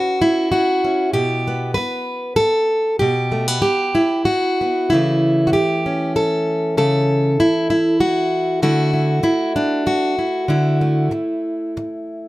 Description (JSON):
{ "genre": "folk, solo fingerstyle acoustic guitar", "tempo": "97 BPM", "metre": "3/4", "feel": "rubato", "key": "unclear", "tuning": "A4 = 440 Hz", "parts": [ { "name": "fingerpicked plugged-in steel-string acoustic guitar", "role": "solo", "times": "0.0-12.3 s", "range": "B2 to B4", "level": "-16 LUFS", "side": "equal", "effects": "none" } ], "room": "light reverb", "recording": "close, detailed microphones", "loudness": "-16 LUFS", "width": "side -18 dB against mid", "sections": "0.0-12.3 A section", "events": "none", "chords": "0.0 Bsus2 (rootless); 1.2 G/B; 4.9 A/C#; 8.6 Dsus2", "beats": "0.55 | 1.16 1.77 2.39 | 3.01 3.64 4.27 | 4.91 5.54 6.17 | 6.79 7.40 8.01 | 8.62 9.24 9.85 | 10.47 11.10 11.75" }